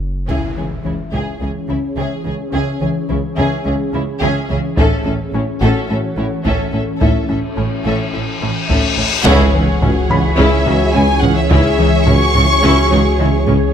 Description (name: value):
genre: cinematic, hybrid orchestral and electronic film score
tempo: 107 BPM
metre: 4/4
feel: straight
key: C# minor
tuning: A4 = 440 Hz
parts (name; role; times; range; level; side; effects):
- saturated sub bass; bass; 0.0-0.3, 9.3-13.7 s; F#1 to C#2; -18 LUFS; equal; none
- warm symphonic violin section; melody; 0.3-13.5 s; C#5 to C#6; -21 LUFS; left 2 dB; low-pass filter
- warm symphonic violin section; second line; 0.3-13.7 s; E4 to C#5; -24 LUFS; left 1 dB; none
- warm symphonic viola section; accompaniment; 0.3-13.6 s; C#4 to E4; -23 LUFS; left 1 dB; low-pass filter
- ethereal airy pad; sustained chords; 1.0-13.7 s; E3 to C#5; -22 LUFS; right 1 dB; ensemble chorus, built-in reverb, low-pass filter
- woody wave-folded pluck; arpeggios; 0.3-13.6 s; C#3 to A4; -25 LUFS; left 4 dB; none
- rich symphonic double bass section; bass; 0.3-13.6 s; A1 to C#2; -21 LUFS; right 2 dB; none
- warm symphonic cello section; bass; 0.3-13.6 s; A2 to C#3; -23 LUFS; right 1 dB; none
- solo taiko drums; drums; 0.3-1.4, 4.8-13.7 s; none; -19 LUFS; equal; none
- impact and reverse cymbal; sound effects; 0.3-2.5, 7.6-11.5 s; none; -22 LUFS; left 2 dB; none
- felt-muted upright piano; texture; 0.3-13.7 s; E4 to B5; -28 LUFS; left 2 dB; tape echo
- dark French horn section; sustained chords; 9.3-13.7 s; E4 to A4; -22 LUFS; left 8 dB; low-pass filter
- warm tuba; bass; 9.3-13.6 s; C#2; -21 LUFS; right 3 dB; none
room: moderate scoring stage reverb, RT60 2.0 s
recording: none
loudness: -13 LUFS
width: side -8 dB against mid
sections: 0.3-9.3 A section; 9.3-13.7 B section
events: break 0.0; drum fill 0.0; impact 0.3-2.5, 9.3-11.5; filter sweep 0.3-9.3; reverse cymbal 7.6-9.3; band accent 9.3-9.8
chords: 0.3 C#m; 4.8 A; 9.3 C#m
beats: | 0.29 0.85 1.41 1.97 | 2.53 3.09 3.65 4.21 | 4.77 5.33 5.90 6.46 | 7.02 7.58 8.14 8.70 | 9.26 9.82 10.38 10.94 | 11.50 12.06 12.62 13.19